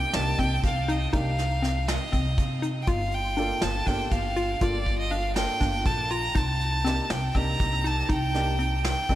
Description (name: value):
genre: progressive instrumental, band music in an uneven meter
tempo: 241 BPM (eighths)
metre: 7/8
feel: straight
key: C dorian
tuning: A4 = 439 Hz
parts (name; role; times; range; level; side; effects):
- bright violin; melody; 0.0-9.2 s; D5 to Bb5; -28 LUFS; equal; tape echo
- clear grand piano; accompaniment; 0.0-9.2 s; Bb3 to A4; -36 LUFS; right 2 dB; none
- hollow square pluck; arpeggios; 0.0-9.2 s; C4 to F4; -32 LUFS; left 2 dB; chorus, tape echo
- upright bass; bass; 0.1-9.2 s; G1 to C3; -28 LUFS; equal; none
- soft brush drum kit; drums; 0.1-9.2 s; hi-hat, kick drum, snare drum; -29 LUFS; equal; none
room: moderate huge ambient reverb, RT60 6.8 s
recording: dreamy mix soaked in reverb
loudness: -23 LUFS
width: side -13 dB against mid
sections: 0.0-9.2 A section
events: none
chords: 0.0 Cm7; 2.9 Gm7; 6.4 Cm7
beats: 0.14 0.39 0.64 0.89 | 1.14 1.39 1.64 1.89 2.13 2.38 2.63 | 2.88 3.13 3.38 3.62 3.87 4.12 4.37 | 4.62 4.87 5.12 5.37 5.62 5.86 6.11 | 6.36 6.61 6.86 7.11 7.36 7.61 7.86 | 8.11 8.36 8.60 8.85 9.10